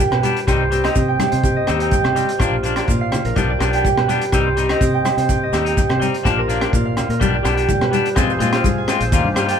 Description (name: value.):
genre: highlife guitar band.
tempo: 125 BPM.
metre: 4/4.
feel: straight.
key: C minor.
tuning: A4 = 439 Hz.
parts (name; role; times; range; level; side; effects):
clean electric guitar; accompaniment; 0.0-9.6 s; F3 to F4; -22 LUFS; left 6 dB; none.
Celtic harp; arpeggios; 0.0-9.6 s; F4 to Ab5; -20 LUFS; right 2 dB; none.
fingered electric bass; bass; 0.0-9.5 s; Bb1 to C3; -22 LUFS; equal; none.
congas; percussion; 0.0-9.2 s; none; -28 LUFS; left 7 dB; none.
maracas; percussion; 0.0-9.5 s; none; -33 LUFS; right 7 dB; none.
crunchy breakbeat drum kit; drums; 0.1-9.6 s; hi-hat, kick drum, rim click; -21 LUFS; equal; none.
agogo bells; percussion; 0.1-9.5 s; none; -32 LUFS; left 4 dB; none.
accordion; sustained chords; 8.2-9.6 s; C4 to Ab4; -28 LUFS; left 1 dB; light tremolo tuning.
room: moderate small room ambience, RT60 0.5 s.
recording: band playing live in one room.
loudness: -15 LUFS.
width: side -8 dB against mid.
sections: 0.0-8.2 A section; 8.2-9.6 B section.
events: none.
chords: 0.5 Cm; 2.4 Bb; 3.4 G/B; 4.3 Cm; 6.2 Bb; 7.2 G/B; 8.2 Fm.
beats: 0.00 | 0.48 0.96 1.44 1.92 | 2.40 2.88 3.36 3.84 | 4.33 4.80 5.29 5.77 | 6.25 6.73 7.21 7.69 | 8.16 8.64 9.12.